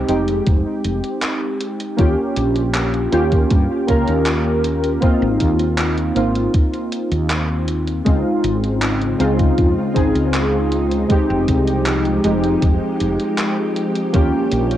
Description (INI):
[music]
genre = vaporwave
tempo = 79 BPM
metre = 4/4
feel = straight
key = F minor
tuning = A4 = 441 Hz
[part]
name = warbly lo-fi synth keys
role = accompaniment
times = 0.0-14.8 s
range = Ab3 to Bb4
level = -18 LUFS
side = equal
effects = analog chorus, cassette tape, tape echo
[part]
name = woody fretless electric bass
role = bass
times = 0.0-14.8 s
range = F1 to G2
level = -21 LUFS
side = equal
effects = none
[part]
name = gated 80s digital drum machine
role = drums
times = 0.1-14.8 s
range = handclaps, hi-hat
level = -26 LUFS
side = equal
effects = gated reverb, cassette tape
[part]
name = electronic kick drum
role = drums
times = 0.5-14.3 s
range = none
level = -16 LUFS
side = equal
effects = cassette tape
[part]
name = soft string machine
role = sustained chords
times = 8.4-14.8 s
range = Db3 to G4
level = -24 LUFS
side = equal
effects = ensemble chorus, cassette tape
[sound]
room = light reverb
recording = home recording on cassette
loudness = -15 LUFS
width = side -12 dB against mid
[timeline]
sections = 0.0-14.8 A section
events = none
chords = 0.0 Fm9; 2.0 Eb9; 5.0 Ab69; 8.1 Dbmaj9; 11.1 Fm9; 14.1 Eb9